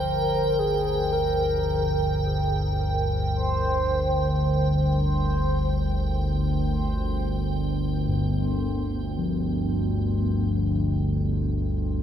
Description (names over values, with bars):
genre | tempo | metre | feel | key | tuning
dark ambient drone | free time | none | none | G minor | A4 = 440 Hz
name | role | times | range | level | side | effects
mellow horn-like synth lead | melody | 0.0-4.4 s | Ab4 to C5 | -30 LUFS | right 1 dB | chorus, diffuse ambient delay
bronze singing bowl | arpeggios | 0.0-12.0 s | G2 to Bb4 | -30 LUFS | left 2 dB | diffuse ambient delay
analog drone | drone | 0.0-12.0 s | G1 to D2 | -24 LUFS | equal | lush chorus
icy glass pad | texture | 0.0-12.0 s | G5 | -33 LUFS | right 2 dB | chorus, built-in reverb
room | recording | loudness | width
wet huge ambient reverb, RT60 8.0 s | none | -22 LUFS | side -9 dB against mid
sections
0.0-12.0 A section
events
fade-out on ambient pad 0.0-12.0; filter sweep on synth drone 0.0-12.0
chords
0.0 Gm